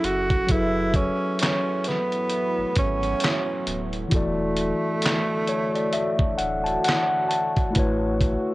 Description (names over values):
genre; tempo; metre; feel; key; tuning
lo-fi hip hop; 66 BPM; 4/4; swing 59% on 16ths; F# minor; A4 = 440 Hz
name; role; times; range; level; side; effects
breathy tenor saxophone; melody; 0.0-6.8 s; A3 to F#4; -26 LUFS; right 2 dB; none
mellow tine electric piano; accompaniment; 0.0-8.5 s; E3 to A5; -26 LUFS; left 1 dB; none
saturated sub bass; bass; 0.0-8.4 s; D1 to A1; -31 LUFS; equal; none
dusty soul sampler-style drum kit; drums; 0.0-8.5 s; handclaps, hi-hat, kick drum, snare drum; -25 LUFS; equal; none
deep dark ambient pad; sustained chords; 1.3-8.5 s; C#3 to F#4; -33 LUFS; equal; chorus, built-in reverb
room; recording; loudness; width
moderate spring reverb, RT60 2.6 s; worn, warbling old tape, cassette tape, warbly pitch drift; -21 LUFS; side -19 dB against mid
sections
0.5-8.5 A section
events
break 0.0-0.5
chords
0.5 F#m11; 4.1 E9sus4; 7.8 A6